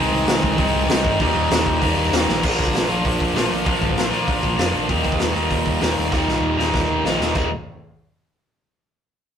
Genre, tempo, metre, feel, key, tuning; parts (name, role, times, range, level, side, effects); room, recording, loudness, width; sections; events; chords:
punk rock; 195 BPM; 4/4; straight; Eb major; A4 = 445 Hz
cranked stack guitar; riff; 0.0-7.5 s; Eb2 to F4; -19 LUFS; equal; overdrive
overdriven picked electric bass; bass; 0.0-7.5 s; Eb1 to C2; -26 LUFS; equal
raw garage drum kit; drums; 0.3-7.4 s; crash cymbal, hi-hat, kick drum, snare drum; -22 LUFS; equal
light reverb; rough rehearsal-room recording, tube saturation; -17 LUFS; side -8 dB against mid
0.0-2.4 A section; 2.4-7.3 B section; 7.3-8.6 C section
drum fill 2.3, 6.1-7.3
0.0 Ab/C; 1.2 Eb; 2.4 Bb; 4.9 Eb; 7.3 Eb5